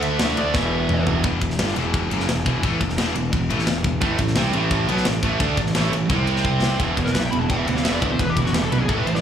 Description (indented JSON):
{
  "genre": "heavy metal",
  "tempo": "173 BPM",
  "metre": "4/4",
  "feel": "straight",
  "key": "E minor",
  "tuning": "A4 = 441 Hz",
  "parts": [
    { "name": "dark smooth lead guitar", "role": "melody", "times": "0.0-1.0, 7.0-9.2 s", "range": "E4 to B5", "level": "-27 LUFS", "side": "left 2 dB", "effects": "overdrive, slapback echo" },
    { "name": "distorted electric guitar", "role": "riff", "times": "0.0-9.2 s", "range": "E2 to D4", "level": "-28 LUFS", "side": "equal", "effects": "distortion, slapback echo" },
    { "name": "high-gain distorted guitar", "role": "riff", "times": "0.0-9.2 s", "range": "E2 to D4", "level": "-28 LUFS", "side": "left 12 dB", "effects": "distortion, slapback echo" },
    { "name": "tight distorted guitar", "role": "riff", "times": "0.0-1.2, 4.0-9.2 s", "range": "E2 to D4", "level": "-24 LUFS", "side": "right 10 dB", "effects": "distortion, slapback echo" },
    { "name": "fuzz picked electric bass", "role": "bass", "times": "0.0-9.2 s", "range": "E1 to D2", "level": "-24 LUFS", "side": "equal", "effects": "overdrive" },
    { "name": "tight metal drum kit", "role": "drums", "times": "0.0-9.2 s", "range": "kick drum, ride cymbal, snare drum, toms", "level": "-24 LUFS", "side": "left 1 dB", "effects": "none" }
  ],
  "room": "little or no reverb",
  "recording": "live gig heard through the venue's PA, club reverb",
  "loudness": "-18 LUFS",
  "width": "side -9 dB against mid",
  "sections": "0.0-1.2 A section; 1.2-6.8 B section; 6.8-9.2 C section",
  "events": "drum fill 0.5-1.2, 6.5-6.8; lead electric guitar solo 6.8-9.2",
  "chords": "0.0 D5; 0.5 E5; 1.2 Em; 4.0 A5; 6.1 C5; 6.8 E5"
}